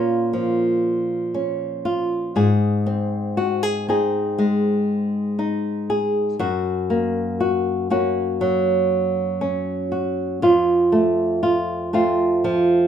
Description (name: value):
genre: pop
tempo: 60 BPM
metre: 4/4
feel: straight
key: unclear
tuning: A4 = 439 Hz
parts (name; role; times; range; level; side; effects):
- flamenco guitar; solo; 0.0-12.9 s; F2 to Ab4; -18 LUFS; equal; none
room: wet studio reverb, RT60 0.5 s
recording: rough home demo mix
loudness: -18 LUFS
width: side -9 dB against mid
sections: 0.0-12.9 A section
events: none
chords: 0.0 Bbm; 2.4 Ab; 6.4 Gb; 10.4 F